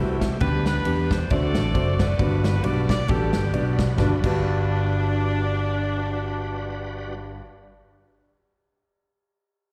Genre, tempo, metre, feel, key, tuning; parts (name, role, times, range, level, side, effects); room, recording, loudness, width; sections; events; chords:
uptempo gospel; 134 BPM; 4/4; swing 57% on 8ths; G major; A4 = 440 Hz
bright saxophone section; melody; 0.0-7.4 s; B3 to D5; -32 LUFS; equal; slapback echo
warm concert grand piano; accompaniment; 0.0-7.4 s; G2 to D5; -30 LUFS; equal; slapback echo
bright tonewheel organ; sustained chords; 0.0-7.1 s; E3 to F#5; -37 LUFS; equal; fast rotary speaker, overdrive, chorus vibrato
fingered electric bass; bass; 0.0-7.4 s; F#1 to E2; -27 LUFS; equal
natural country drum kit; drums; 0.2-4.3 s; crash cymbal, kick drum, ride cymbal, snare drum; -28 LUFS; equal
small room ambience; live gig heard through the venue's PA, recital hall reverb; -23 LUFS; mono
0.0-4.0 A section; 4.0-7.6 B section
0.4 G/D; 1.3 D7; 2.2 Gmaj7